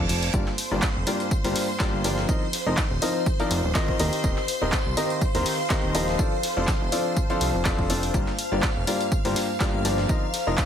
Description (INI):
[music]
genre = piano house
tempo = 123 BPM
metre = 4/4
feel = swing 54% on 16ths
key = G minor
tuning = A4 = 436 Hz
[part]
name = string machine, violins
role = sustained chords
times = 0.0-10.7 s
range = C5 to F6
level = -33 LUFS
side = right 1 dB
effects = ensemble chorus, sidechain pumping
[part]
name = fat analog bass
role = bass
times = 0.0-10.6 s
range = Eb1 to C2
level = -28 LUFS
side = equal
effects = sidechain pumping
[part]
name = deep dark ambient pad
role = texture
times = 0.0-10.7 s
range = C5 to Bb5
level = -32 LUFS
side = left 1 dB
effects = chorus, built-in reverb, sidechain pumping
[part]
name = breakbeat sampler-style drum kit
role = drums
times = 0.1-10.7 s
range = hi-hat, snare drum, tambourine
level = -36 LUFS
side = equal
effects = sidechain pumping on perc, high-pass filter on perc, high-pass filter on snare, sidechain pumping on hats, high-pass filter on hats, high-pass filter on room
[part]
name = punchy analog drum machine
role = drums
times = 0.1-10.7 s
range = handclaps, hi-hat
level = -30 LUFS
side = equal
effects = none
[part]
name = clear grand piano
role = riff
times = 0.3-10.6 s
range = G2 to Eb5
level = -27 LUFS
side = left 1 dB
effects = sidechain pumping, dub echo
[part]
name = electronic kick drum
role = drums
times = 0.3-10.7 s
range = none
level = -26 LUFS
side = equal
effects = none
[sound]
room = little or no reverb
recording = none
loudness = -22 LUFS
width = side -8 dB against mid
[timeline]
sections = 0.0-10.7 A section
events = none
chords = 0.3 Gm7; 2.3 F7sus4; 4.0 Eb6; 6.2 Dm7/F; 8.1 Gm7; 10.1 F7sus4